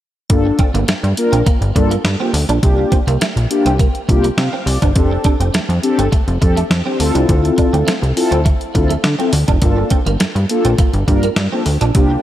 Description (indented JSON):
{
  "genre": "early-eighties boogie funk",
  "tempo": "103 BPM",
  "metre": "4/4",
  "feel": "straight",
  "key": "unclear",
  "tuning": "A4 = 440 Hz",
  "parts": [
    { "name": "mellow synth brass", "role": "accompaniment", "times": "0.3-12.2 s", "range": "Bb3 to F5", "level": "-18 LUFS", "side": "left 2 dB", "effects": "chorus" },
    { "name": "plucky analog bass", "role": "bass", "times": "0.3-12.2 s", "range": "F1 to D3", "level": "-16 LUFS", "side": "equal", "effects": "none" },
    { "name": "detuned 8-bit digital drum machine", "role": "drums", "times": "0.3-12.1 s", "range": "hi-hat, kick drum, snare drum", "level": "-16 LUFS", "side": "equal", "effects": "none" },
    { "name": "clean electric guitar", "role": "riff", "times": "0.5-12.1 s", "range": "A3 to D4", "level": "-24 LUFS", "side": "right 5 dB", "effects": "ensemble chorus, slapback echo" }
  ],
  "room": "light reverb",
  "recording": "none",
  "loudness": "-12 LUFS",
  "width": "side -12 dB against mid",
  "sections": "0.3-12.2 A section",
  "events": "none",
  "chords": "0.3 Gm9; 5.0 F69; 7.0 Dm9; 9.6 Gm9"
}